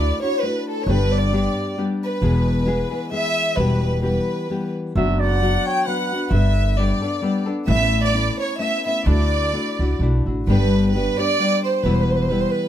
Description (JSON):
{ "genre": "mexican folk, mariachi", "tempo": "132 BPM", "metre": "3/4", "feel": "swing 55% on 8ths, rubato", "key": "D major", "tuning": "A4 = 439 Hz", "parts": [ { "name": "warm chamber violin section", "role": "melody", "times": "0.0-12.7 s", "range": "A4 to G5", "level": "-23 LUFS", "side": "right 1 dB", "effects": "plate reverb" }, { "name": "nylon-string guitar", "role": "accompaniment", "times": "0.0-12.7 s", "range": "E2 to A4", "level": "-23 LUFS", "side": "left 3 dB", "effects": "none" }, { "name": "upright bass", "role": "bass", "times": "0.0-12.4 s", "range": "E1 to D2", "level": "-20 LUFS", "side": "right 1 dB", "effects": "none" }, { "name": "mellow trumpet", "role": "second line", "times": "5.0-6.8 s", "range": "B4 to E5", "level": "-26 LUFS", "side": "right 5 dB", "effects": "none" } ], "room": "light reverb", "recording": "close, detailed microphones", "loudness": "-18 LUFS", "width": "side -11 dB against mid", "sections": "0.0-10.5 A section; 10.5-12.7 B section", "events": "none", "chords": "0.0 Dadd9; 0.9 G; 2.2 E; 3.6 Em; 5.0 Bm/F#; 6.3 Gadd9; 7.7 Aadd9; 9.1 Dadd9; 10.5 G; 11.8 Em", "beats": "0.42 | 0.88 1.33 1.78 | 2.23 2.67 3.12 | 3.58 4.03 4.50 | 4.96 5.42 5.87 | 6.33 6.78 7.24 | 7.69 8.15 8.61 | 9.06 9.53 10.00 | 10.47 10.93 11.38 | 11.83 12.28" }